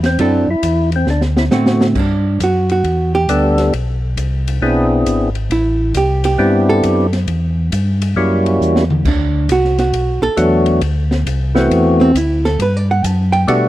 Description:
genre	soul jazz organ trio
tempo	135 BPM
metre	4/4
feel	swing 66% on 8ths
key	G major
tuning	A4 = 440 Hz
part	mellow tonewheel organ	bass	0.0-13.7 s	G#1 to B2	-16 LUFS	equal	chorus vibrato, slow rotary speaker
part	open jazz drum kit	drums	0.0-13.6 s	crash cymbal, hi-hat, kick drum, ride cymbal, snare drum, toms	-22 LUFS	left 1 dB	none
part	percussive tonewheel organ	melody	0.1-13.7 s	E3 to A4	-15 LUFS	left 1 dB	slow rotary speaker, overdrive
part	archtop guitar, miked and amplified	accompaniment	0.2-13.7 s	D3 to A5	-16 LUFS	right 3 dB	none
room	little or no reverb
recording	dry, close 1970s-style studio recording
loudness	-12 LUFS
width	side -15 dB against mid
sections	0.0-2.0 A section; 2.0-13.7 B section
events	drum fill 1.1-2.0, 8.6-9.1; hollow-body jazz guitar solo 2.0-13.7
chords	0.2 F#m7b5; 1.1 D7; 2.0 Gmaj7; 3.7 N.C.; 4.6 E7b13; 5.5 Am11; 7.3 Em; 8.2 F#7b9; 9.1 Bm7; 10.8 D13; 12.6 Gmaj7

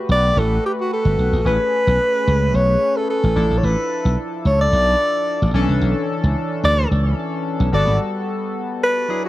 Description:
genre	early-eighties boogie funk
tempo	110 BPM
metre	4/4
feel	straight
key	unclear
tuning	A4 = 440 Hz
part	chorused polysynth	accompaniment	0.0-9.3 s	E3 to B4	-24 LUFS	left 2 dB	none
part	warm alto saxophone	melody	0.1-9.3 s	F#4 to D5	-19 LUFS	equal	none
part	slap bass	bass	0.1-8.0 s	G1 to D2	-17 LUFS	equal	none
room	small room ambience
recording	dry, close 1970s-style studio recording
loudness	-16 LUFS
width	side -16 dB against mid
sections	0.0-9.3 A section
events	break 8.0-9.3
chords	0.0 Gmaj9; 1.5 Amaj9; 3.4 Dmadd9/A; 5.5 Bm11; 7.7 Gmaj9

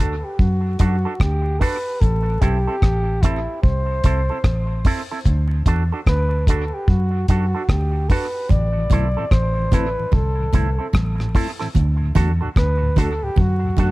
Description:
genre	roots reggae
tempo	74 BPM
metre	4/4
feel	swing 62% on 16ths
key	A dorian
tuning	A4 = 444 Hz
part	mellow flugelhorn	melody	0.0-13.9 s	E4 to D5	-26 LUFS	equal	tape echo
part	electric guitar with an envelope filter	accompaniment	0.0-13.9 s	C4 to A4	-29 LUFS	right 5 dB	tape echo
part	vintage muted fingered electric bass	bass	0.0-13.9 s	A1 to F#2	-20 LUFS	equal	none
part	deep reggae drum kit	drums	0.4-13.9 s	hi-hat, kick drum, rim click	-18 LUFS	equal	none
part	congas	percussion	8.5-13.9 s	none	-26 LUFS	right 4 dB	none
part	mellow tonewheel organ	accompaniment	8.8-13.9 s	D2 to F#4	-29 LUFS	left 2 dB	slow rotary speaker
room	little or no reverb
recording	dark, warm production, vinyl crackle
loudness	-17 LUFS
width	side -20 dB against mid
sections	0.0-13.9 A section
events	none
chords	0.0 D; 2.0 Am; 5.3 D; 8.5 Am; 11.7 D

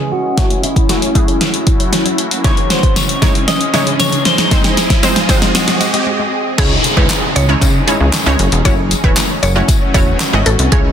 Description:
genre	dance-pop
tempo	116 BPM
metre	4/4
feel	straight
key	C# harmonic minor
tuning	A4 = 440 Hz
part	twelve-string electric guitar	melody	0.0-6.0 s	E4 to D#5	-19 LUFS	left 1 dB	lush chorus, low-pass filter, tape echo
part	shimmering ambient pad	sustained chords	0.0-10.9 s	E3 to D#5	-21 LUFS	equal	chorus, built-in reverb, sidechain pumping, low-pass filter
part	mallet-like synth pluck	arpeggios	0.0-6.3 s	C#3 to B#3	-25 LUFS	equal	chorus, sidechain pumping, low-pass filter, tape echo
part	riser and downlifter	sound effects	1.4-10.7 s	none	-22 LUFS	equal	none
part	wide unison pluck	accompaniment	0.4-10.9 s	G#3 to D#5	-19 LUFS	right 1 dB	analog chorus, sidechain pumping, low-pass filter
part	deep house drum kit	drums	0.4-10.8 s	crash cymbal, handclaps, hi-hat, kick drum, snare drum	-14 LUFS	equal	soft clipping on snare
part	tambourine	percussion	2.7-10.6 s	none	-26 LUFS	left 8 dB	none
part	mallet-like synth pluck	melody	6.6-10.8 s	G#4 to C#5	-21 LUFS	equal	chorus, sidechain pumping, tape echo
part	plucky analog bass	bass	6.6-10.9 s	E1 to C#3	-14 LUFS	equal	sidechain pumping
room	light reverb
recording	dense, heavily limited modern master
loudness	-11 LUFS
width	side -9 dB against mid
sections	0.0-6.6 A section; 6.6-10.9 B section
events	build-up 0.0-6.6; drum fill 0.0-6.1; filter sweep 0.0-6.6; riser 1.4-6.6; break 6.1-6.6; drop 6.6-10.9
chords	0.4 F#m7; 2.4 C#madd9; 4.5 G#; 6.6 C#madd9; 8.7 F#m7

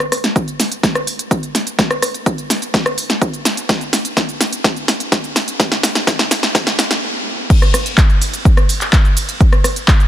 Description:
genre	house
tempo	126 BPM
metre	4/4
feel	straight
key	none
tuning	none
part	deep house drum kit	drums	0.0-10.1 s	crash cymbal, handclaps, hi-hat, ride cymbal, rim click, shaker, snare drum	-16 LUFS	equal	high-pass filter on snare, sidechain pumping on hats, high-pass filter on hats, sidechain pumping on perc, high-pass filter on perc, sidechain pumping on cymbals, high-pass filter on cymbals, high-pass filter on room
part	electronic kick drum	drums	0.4-10.0 s	none	-14 LUFS	equal	high-pass filter on kick, high-pass filter on room
room	light reverb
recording	dense, heavily limited modern master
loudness	-13 LUFS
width	side -12 dB against mid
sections	0.0-7.5 A section; 7.5-10.1 B section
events	build-up 0.0-7.5; drum fill 0.0-7.0; stop 7.0-7.5; drop 7.5-10.1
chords	none

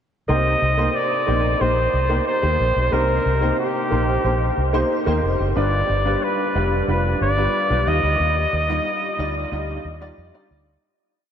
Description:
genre	1980s-style pop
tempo	91 BPM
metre	4/4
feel	straight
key	C minor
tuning	A4 = 438 Hz
part	clear flugelhorn	melody	0.3-10.2 s	G4 to Eb5	-22 LUFS	equal	diffuse ambient delay
part	warm baby grand piano	accompaniment	0.3-10.9 s	G2 to Eb5	-23 LUFS	equal	ensemble chorus
part	vintage muted fingered electric bass	bass	0.3-10.8 s	F1 to F2	-22 LUFS	equal	none
room	wet huge ambient reverb, RT60 8.0 s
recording	dreamy mix soaked in reverb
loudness	-18 LUFS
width	side -8 dB against mid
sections	0.3-10.8 chorus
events	fade-out 8.2-10.8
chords	0.3 Cm7; 5.6 G7; 7.9 Ebmaj9

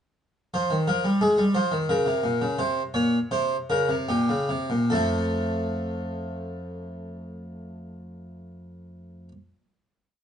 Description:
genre	classical, baroque-style two-part invention for harpsichord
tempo	71-90 BPM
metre	3/4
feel	straight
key	unclear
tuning	A4 = 445 Hz
part	harpsichord	solo	0.5-9.3 s	F2 to Db5	-24 LUFS	equal	none
room	moderate stone room reverb, RT60 1.1 s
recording	dark, warm production, nothing above 10.3 kHz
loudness	-22 LUFS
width	side -8 dB against mid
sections	0.5-4.9 exposition; 4.9-9.9 final chord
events	slowing down 0.5-6.2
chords	0.5 Fm; 1.9 Bbm; 2.6 C5; 4.9 F

